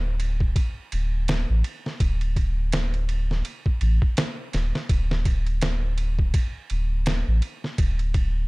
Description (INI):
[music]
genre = trip hop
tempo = 83 BPM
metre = 4/4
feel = swing 58% on 16ths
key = unclear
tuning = A4 = 440 Hz
[part]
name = warm sub bass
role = bass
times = 0.0-8.5 s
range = D1 to A1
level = -23 LUFS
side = equal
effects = none
[part]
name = trip hop sampler-style drum kit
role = drums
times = 0.2-8.3 s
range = kick drum, ride cymbal, snare drum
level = -25 LUFS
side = equal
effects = small room ambience
[sound]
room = little or no reverb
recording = dark, warm production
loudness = -22 LUFS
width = side -26 dB against mid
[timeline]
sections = 0.0-8.5 A section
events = none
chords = none